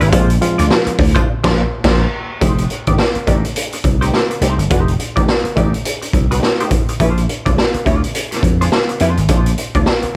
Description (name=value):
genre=funk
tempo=105 BPM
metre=4/4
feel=swing 60% on 16ths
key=unclear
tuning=A4 = 438 Hz
part: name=vintage hollow-body jazz guitar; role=accompaniment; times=0.0-10.1 s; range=Ab3 to D5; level=-24 LUFS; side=equal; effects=wah
part: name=vintage slap bass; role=bass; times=0.0-10.1 s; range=F1 to F2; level=-19 LUFS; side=equal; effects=none
part: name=raw garage drum kit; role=drums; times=0.0-10.1 s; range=crash cymbal, hi-hat, kick drum, snare drum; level=-18 LUFS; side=equal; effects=none
part: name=barky reed electric piano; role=stabs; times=0.1-1.0 s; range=F3 to F4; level=-21 LUFS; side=equal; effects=overdrive, fast tremolo
room=little or no reverb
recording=none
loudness=-15 LUFS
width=mono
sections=0.0-2.4 A section; 2.4-10.2 B section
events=band accent 1.3-2.4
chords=0.0 Bb9; 2.4 F9 (rootless); 7.0 Bb9